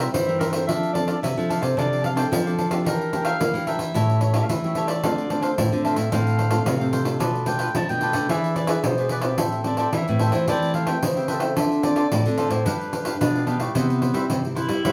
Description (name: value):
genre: samba and choro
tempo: 110 BPM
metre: 4/4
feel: straight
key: C major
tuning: A4 = 440 Hz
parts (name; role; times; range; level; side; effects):
- warm clarinet; melody; 0.0-14.9 s; A3 to A5; -29 LUFS; equal; none
- cavaquinho; accompaniment; 0.0-14.9 s; D4 to G5; -31 LUFS; equal; none
- nylon-string guitar; accompaniment; 0.0-14.9 s; G2 to B4; -32 LUFS; equal; none
- nylon-string guitar; bass; 0.0-14.9 s; G2 to Bb3; -27 LUFS; equal; none
- pandeiro; percussion; 0.1-14.9 s; none; -29 LUFS; equal; none
room: wet studio reverb, RT60 0.6 s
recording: band playing live in one room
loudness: -22 LUFS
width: mono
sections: 0.0-13.8 A section; 13.8-14.9 B section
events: none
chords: 0.0 C7; 0.7 F6; 2.9 Em7b5; 4.0 A7; 5.0 Dm7; 7.2 Bm7b5; 8.3 E7; 9.4 Am9; 11.6 Dm7; 12.7 G7; 13.8 Cmaj7